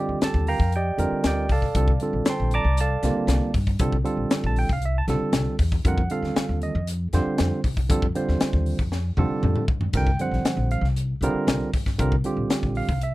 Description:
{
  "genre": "electric jazz fusion",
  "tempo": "117 BPM",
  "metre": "4/4",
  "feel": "straight",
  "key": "unclear",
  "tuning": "A4 = 440 Hz",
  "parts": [
    { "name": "barky tine electric piano", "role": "accompaniment", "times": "0.0-13.1 s", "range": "D3 to D6", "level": "-25 LUFS", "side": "right 2 dB", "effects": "overdrive" },
    { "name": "upright bass", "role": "bass", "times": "0.1-13.1 s", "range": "Bb1 to G2", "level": "-24 LUFS", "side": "equal", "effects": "none" },
    { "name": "crisp fusion drum kit", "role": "drums", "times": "0.2-13.1 s", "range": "hi-hat, kick drum, snare drum, splash cymbal, toms", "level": "-25 LUFS", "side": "left 1 dB", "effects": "none" }
  ],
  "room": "little or no reverb",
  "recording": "none",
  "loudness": "-21 LUFS",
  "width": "side -18 dB against mid",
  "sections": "0.0-13.1 A section",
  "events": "drum fill 8.9-9.9",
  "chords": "0.0 F13sus4; 1.8 C13sus4; 5.8 F7sus2; 9.9 C9sus4"
}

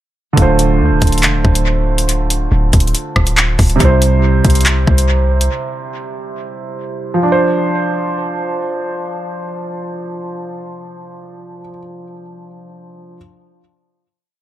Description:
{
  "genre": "hip hop, drill",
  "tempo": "140 BPM",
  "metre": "4/4",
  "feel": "half-time",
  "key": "D minor",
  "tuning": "A4 = 440 Hz",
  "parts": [
    { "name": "dark baby grand piano", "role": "accompaniment", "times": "0.3-13.2 s", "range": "C3 to C5", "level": "-18 LUFS", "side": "right 2 dB", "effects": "tape echo" },
    { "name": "hard-hitting 808-style bass", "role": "bass", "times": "0.4-5.5 s", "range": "D1 to D2", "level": "-14 LUFS", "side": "equal", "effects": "none" },
    { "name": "drill drum kit", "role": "drums", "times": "0.4-5.5 s", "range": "handclaps, hi-hat, kick drum, rim click", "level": "-14 LUFS", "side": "equal", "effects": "tape echo" }
  ],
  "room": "little or no reverb",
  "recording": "echo-heavy mix",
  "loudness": "-12 LUFS",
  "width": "side -13 dB against mid",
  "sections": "0.4-7.2 hook; 7.2-10.7 final chord",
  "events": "none",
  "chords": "0.4 Dm7; 3.8 C; 7.2 Dm7"
}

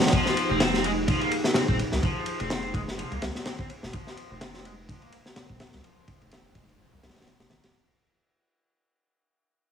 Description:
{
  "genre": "breakbeat, breaks",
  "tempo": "126 BPM",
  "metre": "4/4",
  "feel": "swing 55% on 16ths",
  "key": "F minor",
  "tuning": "A4 = 440 Hz",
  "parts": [
    { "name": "warbly tape-like pad", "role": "sustained chords", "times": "0.0-7.7 s", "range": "F3 to C5", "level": "-31 LUFS", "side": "right 1 dB", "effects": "chorus, built-in reverb, sidechain pumping" },
    { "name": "crunchy breakbeat drum kit", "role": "drums", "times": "0.0-7.7 s", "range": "kick drum, ride cymbal, snare drum", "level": "-26 LUFS", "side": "equal", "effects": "none" },
    { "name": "distorted electric guitar", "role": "riff", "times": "0.1-7.5 s", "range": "F3 to C4", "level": "-30 LUFS", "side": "left 1 dB", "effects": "overdrive, low-pass filter, digital delay" },
    { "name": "saturated sub bass", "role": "bass", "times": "0.5-7.6 s", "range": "Eb1 to C2", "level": "-32 LUFS", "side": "equal", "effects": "none" }
  ],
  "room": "light reverb, small room ambience",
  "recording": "small room reverb",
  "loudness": "-24 LUFS",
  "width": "side -8 dB against mid",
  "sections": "0.0-7.7 A section",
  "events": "fade-out 0.0-7.7; filter sweep on distorted electric guitar 0.0-7.7",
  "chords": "0.0 Fm9"
}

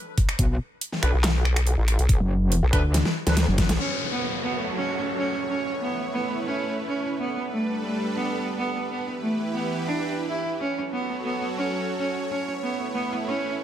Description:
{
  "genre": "heavy wobble dubstep",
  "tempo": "141 BPM",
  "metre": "4/4",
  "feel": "half-time",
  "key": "F# phrygian",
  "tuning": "A4 = 440 Hz",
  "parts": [
    { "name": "dubstep drum kit", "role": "drums", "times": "0.2-3.8 s", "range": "finger snaps, handclaps, hi-hat, snare drum", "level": "-26 LUFS", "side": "left 1 dB", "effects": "overdrive" },
    { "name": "electronic kick drum", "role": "drums", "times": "0.2-3.7 s", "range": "none", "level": "-22 LUFS", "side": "equal", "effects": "overdrive" },
    { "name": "metallic wobble bass", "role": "bass", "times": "0.4-3.7 s", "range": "F#1 to D2", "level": "-22 LUFS", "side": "equal", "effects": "chorus, overdrive" },
    { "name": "mellow brass ensemble", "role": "stabs", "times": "1.0-3.4 s", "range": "D4 to B4", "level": "-34 LUFS", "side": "right 1 dB", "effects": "ping-pong delay" },
    { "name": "vowel-sweep wobble bass", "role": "bass", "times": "1.0-3.8 s", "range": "A1 to D2", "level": "-21 LUFS", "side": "equal", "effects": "chorus, overdrive" },
    { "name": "rich cello", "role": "melody", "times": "3.8-13.5 s", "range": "A3 to E4", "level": "-27 LUFS", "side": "right 2 dB", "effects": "vintage 12-bit sampler grit, ping-pong delay" },
    { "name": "supersaw pad", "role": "sustained chords", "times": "4.2-13.6 s", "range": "E3 to C#5", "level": "-31 LUFS", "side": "right 1 dB", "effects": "sidechain pumping" },
    { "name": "downlifter", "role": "sound effects", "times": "3.8-7.2 s", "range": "none", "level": "-32 LUFS", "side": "left 2 dB", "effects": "none" }
  ],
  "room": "light reverb",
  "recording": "none",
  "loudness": "-23 LUFS",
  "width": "side -10 dB against mid",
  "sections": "0.0-3.8 A section; 3.8-13.6 B section",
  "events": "drop 0.0-3.8; drum fill 2.9-3.8; band accent 3.7",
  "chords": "0.0 Bm7; 3.8 F#m; 5.5 Aadd9; 7.2 Gadd9; 8.9 Em; 10.6 F#m; 12.3 Aadd9"
}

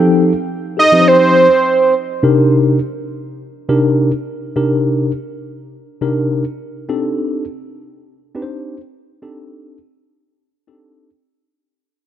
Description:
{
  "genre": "funk",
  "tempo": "103 BPM",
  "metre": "4/4",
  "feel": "straight",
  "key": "C dorian",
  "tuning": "A4 = 440 Hz",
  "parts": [
    { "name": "mellow tine electric piano", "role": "accompaniment", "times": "0.0-11.1 s", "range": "C3 to C5", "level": "-15 LUFS", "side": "left 1 dB", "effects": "medium stereo tremolo" },
    { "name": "fat analog lead", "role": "melody", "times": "0.8-1.9 s", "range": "C5 to Eb5", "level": "-12 LUFS", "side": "right 2 dB", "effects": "chorus, tape echo" }
  ],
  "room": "moderate plate reverb, RT60 3.1 s",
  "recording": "dark, warm production",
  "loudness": "-12 LUFS",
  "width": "side -10 dB against mid",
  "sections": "0.0-2.2 A section; 2.2-11.5 B section",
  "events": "fade-out 2.2-11.5",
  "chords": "0.0 F9; 2.2 Cm9; 6.9 Cm69"
}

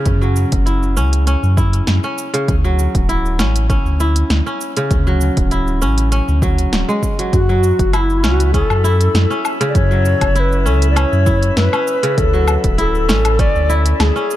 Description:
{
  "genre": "organic downtempo",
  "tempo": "99 BPM",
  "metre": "4/4",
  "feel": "straight",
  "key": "F# minor",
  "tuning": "A4 = 439 Hz",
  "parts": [
    { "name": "kora", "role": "arpeggios", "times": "0.0-14.4 s", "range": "C#3 to E4", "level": "-20 LUFS", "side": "equal", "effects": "ping-pong delay" },
    { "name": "warm sub bass", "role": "bass", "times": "0.1-14.1 s", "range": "D1 to F#2", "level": "-15 LUFS", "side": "equal", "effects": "sidechain pumping" },
    { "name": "deep house drum kit", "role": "drums", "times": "0.1-14.4 s", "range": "hi-hat, shaker, snare drum, woodblock", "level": "-22 LUFS", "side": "equal", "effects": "none" },
    { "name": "electronic kick drum", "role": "drums", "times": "0.1-13.5 s", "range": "none", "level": "-18 LUFS", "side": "equal", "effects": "none" },
    { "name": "reedy low Native American-style wooden flute", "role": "melody", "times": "7.3-14.4 s", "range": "E4 to D5", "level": "-18 LUFS", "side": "left 2 dB", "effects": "ping-pong delay" },
    { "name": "drifting glass-harmonics texture", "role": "texture", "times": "8.1-14.4 s", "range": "E4 to E5", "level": "-28 LUFS", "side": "equal", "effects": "chorus, built-in reverb" }
  ],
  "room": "little or no reverb",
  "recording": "dark, warm production",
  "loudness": "-13 LUFS",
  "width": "side -14 dB against mid",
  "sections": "0.0-14.4 A section",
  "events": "none",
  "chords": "0.0 F#5; 2.5 Dmaj9; 7.3 F#m7; 12.2 Dmaj9"
}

